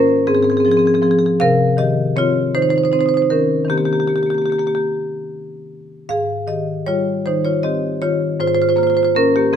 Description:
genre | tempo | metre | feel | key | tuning
classical, contemporary piece for solo marimba | 51 BPM (dotted quarters) | 6/8 | uneven beats, rubato | Ab major | A4 = 439 Hz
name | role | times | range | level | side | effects
marimba with medium hard mallets | solo | 0.0-9.6 s | Ab2 to F5 | -15 LUFS | equal | none
room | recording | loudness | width
moderate stone room reverb, RT60 1.1 s | minimal, uncompressed stereo recording | -14 LUFS | side -8 dB against mid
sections
0.0-9.6 A section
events
none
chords
0.3 Ab6; 1.4 Cm7; 3.7 Eb6; 6.1 Abmaj7; 8.4 Bbm9/Ab

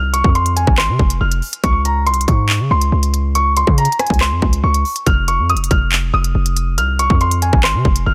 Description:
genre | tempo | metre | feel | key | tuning
hip hop, drill | 140 BPM | 4/4 | half-time | F minor | A4 = 440 Hz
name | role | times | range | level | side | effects
dark concert grand piano | melody | 0.0-8.1 s | Ab5 to F6 | -21 LUFS | equal | none
hard-hitting 808-style bass | bass | 0.0-8.1 s | F1 to Db3 | -19 LUFS | equal | none
drill drum kit | drums | 0.1-8.1 s | handclaps, hi-hat, kick drum, rim click | -19 LUFS | equal | none
room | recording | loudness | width
little or no reverb | none | -15 LUFS | mono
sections
0.0-8.1 A section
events
none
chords
0.0 Fm; 1.6 N.C.; 5.1 F5

